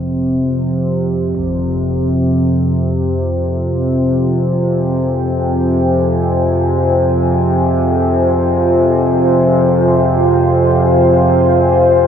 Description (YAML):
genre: dark ambient drone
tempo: free time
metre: none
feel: none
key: F minor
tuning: A4 = 440 Hz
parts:
  - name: deep dark ambient pad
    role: sustained chords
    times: 2.8-12.1 s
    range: F4 to Ab5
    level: -16 LUFS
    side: equal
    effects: chorus, built-in reverb
  - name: analog drone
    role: drone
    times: 0.0-12.1 s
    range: F2 to C3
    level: -13 LUFS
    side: equal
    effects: chorus
  - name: bronze singing bowl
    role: texture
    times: 0.0-12.1 s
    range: C5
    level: -39 LUFS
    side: left 4 dB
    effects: none
  - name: impact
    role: percussion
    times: 1.3-1.6 s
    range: none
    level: -36 LUFS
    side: equal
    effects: none
room: wet huge ambient reverb, RT60 8.3 s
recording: dreamy mix soaked in reverb, cassette tape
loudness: -12 LUFS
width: side -8 dB against mid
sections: 0.0-12.1 A section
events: fade-in on ambient pad 0.0-12.1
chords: 0.0 Fm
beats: free time